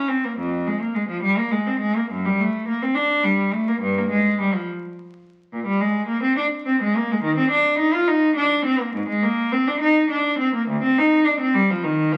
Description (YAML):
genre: classical, baroque-style suite movement for unaccompanied cello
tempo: 70 BPM (dotted quarters)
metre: 12/8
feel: rubato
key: C minor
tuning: A4 = 441 Hz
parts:
  - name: clear cello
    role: solo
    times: 0.0-12.2 s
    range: D2 to F4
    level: -21 LUFS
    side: equal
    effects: none
room: wet stone room reverb, RT60 1.1 s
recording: very old 78 rpm record, vinyl crackle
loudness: -21 LUFS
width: mono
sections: 0.0-12.2 A section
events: none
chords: none